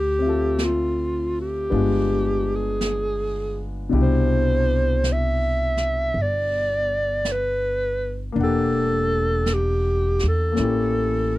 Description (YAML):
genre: jazz ballad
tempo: 54 BPM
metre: 4/4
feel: swing 68% on 8ths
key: unclear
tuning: A4 = 441 Hz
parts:
  - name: mellow clarinet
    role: melody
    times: 0.0-11.4 s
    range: F4 to E5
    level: -23 LUFS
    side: right 1 dB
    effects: none
  - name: upright bass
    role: bass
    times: 0.0-11.4 s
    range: E1 to E2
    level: -24 LUFS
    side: equal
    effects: none
  - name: clear concert grand piano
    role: accompaniment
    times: 0.2-11.4 s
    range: B2 to F#5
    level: -26 LUFS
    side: left 5 dB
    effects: none
  - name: jazz brush drum kit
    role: drums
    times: 0.6-11.4 s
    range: brushed snare drum, hi-hat, snare drum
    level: -32 LUFS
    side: right 1 dB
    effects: none
room: little or no reverb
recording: none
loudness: -20 LUFS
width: side -16 dB against mid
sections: 0.0-11.4 A section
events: none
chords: 0.0 Dm7; 1.7 G7b9; 3.9 Cmaj9; 8.4 Em7b5; 10.6 A7b9